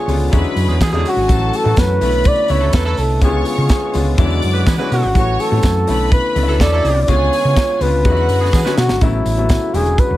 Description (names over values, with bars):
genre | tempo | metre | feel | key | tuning
disco | 124 BPM | 4/4 | straight | A major | A4 = 439 Hz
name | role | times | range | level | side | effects
breathy flugelhorn | melody | 0.0-10.2 s | E4 to D5 | -18 LUFS | equal | slapback echo
bright symphonic string section | second line | 0.0-8.8 s | D4 to D6 | -26 LUFS | equal | none
clear grand piano | accompaniment | 0.0-10.2 s | C#3 to F#4 | -22 LUFS | left 6 dB | none
mellow French horn section | sustained chords | 0.0-10.2 s | B2 to F#4 | -27 LUFS | right 1 dB | none
hollow-body short-scale fingered electric bass | bass | 0.1-10.2 s | E1 to E3 | -17 LUFS | equal | none
tight funk drum kit | drums | 0.1-10.1 s | hi-hat, kick drum, snare drum | -17 LUFS | equal | none
tambourine | percussion | 0.1-10.1 s | none | -37 LUFS | right 7 dB | none
clear horn section | stabs | 0.7-8.8 s | D3 to B4 | -24 LUFS | right 4 dB | none
room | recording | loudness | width
small room ambience | none | -13 LUFS | side -15 dB against mid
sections
0.0-9.0 A section; 9.0-10.2 B section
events
drum fill 8.5-9.0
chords
0.3 E13; 1.3 A6; 2.0 Bm11; 3.2 C#7b9; 4.2 E13; 5.2 A6; 5.9 Bm11; 7.1 C#7b9; 8.0 E13; 9.0 A69